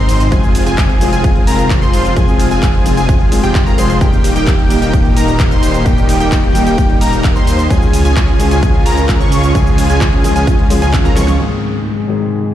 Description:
EDM, festival progressive house; 130 BPM; 4/4; straight; Ab major; A4 = 440 Hz
warm grand piano; accompaniment; 0.0-12.5 s; Ab2 to Ab4; -19 LUFS; left 4 dB; sidechain pumping, digital delay
lush unison pad; sustained chords; 0.0-12.5 s; Bb2 to Ab4; -22 LUFS; right 1 dB; chorus, phaser, sidechain pumping
plucky unison lead; arpeggios; 0.0-11.4 s; G5 to Db6; -21 LUFS; left 1 dB; sidechain pumping, digital delay
supersaw chords; riff; 0.0-11.4 s; Bb3 to Db5; -18 LUFS; right 1 dB; sidechain pumping, digital delay
wide detuned saw bass; bass; 0.0-11.4 s; Eb1 to Eb2; -16 LUFS; equal; chorus, sidechain pumping
big-room dance drum kit; drums; 0.1-11.4 s; cabasa, handclaps, hi-hat, ride cymbal, snare drum; -24 LUFS; equal; overdrive, small room ambience
electronic kick drum; drums; 0.3-11.0 s; -12 LUFS; equal; overdrive, small room ambience
downlifter; sound effects; 11.4-12.5 s; -25 LUFS; right 1 dB
little or no reverb; played on a big sound system in a bare room, large studio reverb; -10 LUFS; side -12 dB against mid
0.0-11.4 A section; 11.4-12.5 B section
drop 0.0-11.4; drum fill 11.1-11.4; band accent 11.3; filter sweep on analog synth pad 11.4-12.5
0.3 Fm; 4.0 Eb; 7.7 Db; 11.4 Ab
| 0.32 0.78 1.24 1.70 | 2.17 2.63 3.09 3.55 | 4.01 4.47 4.93 5.40 | 5.86 6.32 6.78 7.24 | 7.70 8.17 8.63 9.09 | 9.55 10.01 10.47 10.94 | 11.40 11.86 12.32

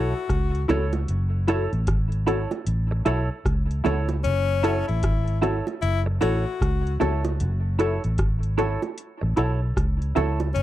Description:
roots reggae; 76 BPM; 4/4; swing 62% on 16ths; F# minor; A4 = 440 Hz
clear tenor saxophone; second line; 0.0-10.6 s; C#4 to F#4; -30 LUFS; left 8 dB; dub echo
semi-hollow electric guitar; accompaniment; 0.0-10.4 s; E4 to C#5; -29 LUFS; right 5 dB; spring reverb, dub echo
filtered dub chord stab; stabs; 0.0-10.3 s; E4 to A4; -27 LUFS; left 4 dB; phaser
vintage muted fingered electric bass; bass; 0.0-10.6 s; F#1 to C#2; -24 LUFS; equal
booming analog drum machine; drums; 0.3-10.6 s; hi-hat, kick drum, rim click; -26 LUFS; equal
bongos; percussion; 0.7-10.5 s; -32 LUFS; right 6 dB
little or no reverb; dry, close 1970s-style studio recording; -21 LUFS; side -13 dB against mid
0.0-10.6 A section
0.0 F#m7
0.29 | 1.08 1.87 2.66 3.45 | 4.24 5.03 5.82 6.61 | 7.40 8.19 8.98 9.77 | 10.55

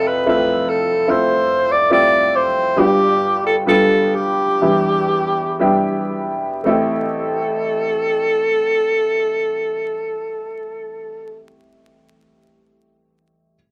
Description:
pop; 55-74 BPM; 4/4; straight; A minor; A4 = 440 Hz
warm alto saxophone; melody; 0.0-11.4 s; G4 to D5; -20 LUFS; equal
warm upright piano; accompaniment; 0.0-13.6 s; F1 to A4; -22 LUFS; equal
wet club reverb, RT60 0.5 s; vinyl crackle; -17 LUFS; mono
0.0-6.7 A section; 6.7-11.0 B section
slowing down 0.0-6.7
0.0 Fmaj7; 2.8 G7; 4.6 Em7; 6.7 Am7
0.26 1.08 1.92 | 2.78 3.67 4.61 5.61 | 6.66 7.76 8.85 9.94

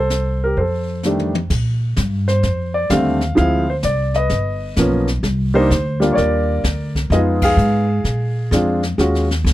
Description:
jazz piano trio; 128 BPM; 4/4; swing 66% on 8ths; Bb major; A4 = 441 Hz
warm grand piano; melody; 0.0-9.3 s; D3 to F5; -18 LUFS; equal
upright bass; bass; 0.0-9.5 s; G1 to Bb2; -19 LUFS; equal
jazz brush drum kit; drums; 0.1-9.5 s; brushed snare drum, crash cymbal, hi-hat, kick drum, snare drum, toms; -25 LUFS; left 1 dB
little or no reverb; dry, close 1970s-style studio recording; -15 LUFS; side -15 dB against mid
0.0-1.5 A section; 1.5-9.5 B section
drum fill 1.0-1.5; band accent 7.3
0.0 C5; 0.6 F13; 1.5 Bb69; 3.4 Dm7b5; 4.3 G7alt; 5.2 Cm9; 7.1 Fm7b5; 8.1 Bb7; 9.0 Ebm11
0.10 0.56 1.03 | 1.50 1.97 2.44 2.90 | 3.37 3.84 4.31 4.77 | 5.24 5.71 6.18 6.64 | 7.11 7.58 8.05 8.52 | 8.99 9.46

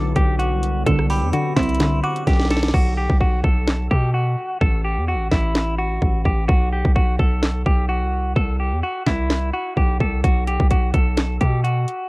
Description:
hip hop, trap; 128 BPM; 4/4; half-time; B phrygian; A4 = 440 Hz
semi-hollow electric guitar; melody; 0.0-12.1 s; E4 to A4; -24 LUFS; equal; spring reverb
soft round pluck; accompaniment; 0.0-2.7 s; D3 to C4; -23 LUFS; equal; chorus
deep dark ambient pad; sustained chords; 0.0-2.7 s; D3 to G4; -31 LUFS; left 2 dB; chorus, built-in reverb
distorted 808-style bass; bass; 0.0-11.9 s; A1 to B2; -21 LUFS; equal; distortion
trap drum kit; drums; 0.2-12.0 s; crash cymbal, handclaps, hi-hat, kick drum, rim click, snare drum; -19 LUFS; equal
glassy synth bell; second line; 1.1-2.7 s; B5 to D6; -32 LUFS; right 2 dB; chorus, tremolo, tape echo
little or no reverb; worn, warbling old tape, cassette tape, warbly pitch drift; -17 LUFS; side -23 dB against mid
0.0-2.7 A section; 2.7-12.1 B section
drum fill 2.3-2.7; hi-hats muted 2.7-10.2
0.0 Bm; 0.9 Csus2; 2.7 B5; 4.6 A5; 6.5 B5; 8.4 Am13; 10.2 B5
0.39 | 0.86 1.33 1.80 2.27 | 2.74 3.21 3.67 4.14 | 4.61 5.08 5.55 6.02 | 6.49 6.96 7.42 7.89 | 8.36 8.83 9.30 9.77 | 10.24 10.71 11.18 11.64

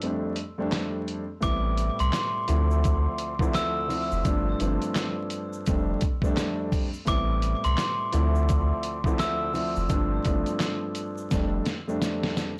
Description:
hip hop, boom-bap hip-hop; 85 BPM; 4/4; swing 62% on 16ths; A4 = 440 Hz
dark concert grand piano; accompaniment; 0.0-12.5 s; D2 to E4; -32 LUFS; equal
dusty soul sampler-style drum kit; drums; 0.0-12.6 s; handclaps, hi-hat, kick drum, snare drum; -31 LUFS; equal; vintage 12-bit sampler grit
glockenspiel with soft plastic mallets; melody; 1.4-9.5 s; C6 to E6; -34 LUFS; equal; plate reverb, digital delay
soft dub sub bass; bass; 1.4-11.6 s; F1 to D2; -28 LUFS; equal; transformer saturation
tube shaker; percussion; 1.4-12.6 s; -53 LUFS; equal
light reverb; blown-out, overdriven recording, vinyl crackle, overdrive; -27 LUFS; mono
0.0-1.4 A section; 1.4-12.6 B section
break 0.0-1.4; drum fill 11.3-12.6
0.0 F6; 1.4 Am7; 2.5 Dm7; 4.3 G9sus4; 5.7 F6; 7.1 Am7; 8.1 Dm7; 9.9 G9sus4; 11.3 F6
0.02 0.72 | 1.43 2.13 2.84 3.55 | 4.25 4.96 5.66 6.37 | 7.08 7.78 8.49 9.19 | 9.90 10.61 11.31 12.02

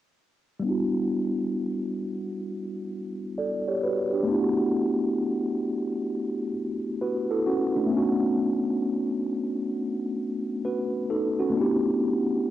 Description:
hip hop; 66 BPM; 4/4; swing 65% on 16ths; E dorian; A4 = 440 Hz
mellow tine electric piano; accompaniment; 0.6-12.5 s; G3 to D5; -24 LUFS; equal; medium stereo tremolo, cassette tape, low-pass filter
moderate spring reverb, RT60 1.8 s, digital ambience; home recording on cassette; -24 LUFS; side -13 dB against mid
0.6-12.5 A section
filter sweep on tine electric piano 0.6-12.5
0.6 Em9; 4.3 D6; 7.9 B9; 11.5 A7sus4
| 0.64 1.55 2.46 3.37 | 4.28 5.18 6.09 7.00 | 7.91 8.82 9.73 10.64 | 11.55 12.46

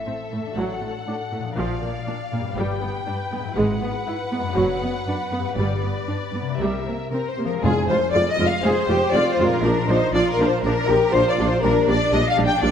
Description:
cinematic, heroic adventure film score; 120 BPM; 4/4; straight; F dorian from 7.6 s; A4 = 442 Hz
warm symphonic violin section; melody; 0.0-12.7 s; Ab4 to G5; -28 LUFS; left 2 dB
warm symphonic violin section; second line; 0.0-12.7 s; Ab4 to G5; -24 LUFS; left 3 dB
concert harp; arpeggios; 0.0-12.7 s; F#2 to B4; -32 LUFS; left 7 dB
warm symphonic viola section; accompaniment; 0.1-12.7 s; F3 to F4; -26 LUFS; right 1 dB
rich symphonic cello section; bass; 0.1-12.7 s; F#2 to Ab4; -27 LUFS; right 2 dB
rich symphonic double bass section; bass; 0.6-12.7 s; F#1 to F2; -28 LUFS; right 2 dB
timpani; percussion; 0.6-1.3, 7.6-8.4 s; F2 to A2; -27 LUFS; left 2 dB
mellow tuba; bass; 7.6-12.7 s; F1 to Bb1; -26 LUFS; right 3 dB
wet scoring stage reverb, RT60 1.6 s; -19 LUFS; side -8 dB against mid
0.0-7.6 A section; 7.6-12.7 B section
0.0 Am; 0.6 D/A; 1.6 Bb; 2.6 G; 3.6 Eadd9/G#; 4.6 Bm/F#; 5.6 G; 6.6 C7; 7.6 Fm; 9.6 Bb; 11.6 Gm/Bb
0.06 0.56 1.07 | 1.58 2.08 2.58 3.08 | 3.58 4.08 4.57 5.07 | 5.57 6.07 6.59 7.11 | 7.63 8.13 8.64 9.14 | 9.64 10.14 10.63 11.13 | 11.63 12.13 12.62

